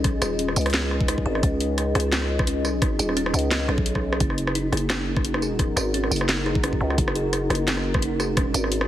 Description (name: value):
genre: half-time drum and bass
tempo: 173 BPM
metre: 4/4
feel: swing 55% on 16ths, half-time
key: unclear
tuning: A4 = 439 Hz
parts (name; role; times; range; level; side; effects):
- dark analog pad; sustained chords; 0.0-8.9 s; C#4 to D#5; -31 LUFS; left 1 dB; chorus, sidechain pumping
- growling 808-style bass; bass; 0.0-8.9 s; D#1 to C#2; -25 LUFS; equal; none
- drum and bass drum kit; drums; 0.0-8.9 s; hi-hat, rim click, snare drum, tambourine; -26 LUFS; equal; none
- electronic kick drum; drums; 0.0-8.4 s; none; -24 LUFS; equal; overdrive
- kalimba; arpeggios; 0.2-8.5 s; C#4 to G#4; -29 LUFS; right 1 dB; vintage 12-bit sampler grit, ping-pong delay
room: light reverb, digital ambience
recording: heavily compressed radio sound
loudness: -21 LUFS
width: side -12 dB against mid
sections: 0.0-8.9 A section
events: none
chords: 0.0 C#sus2; 4.2 F#6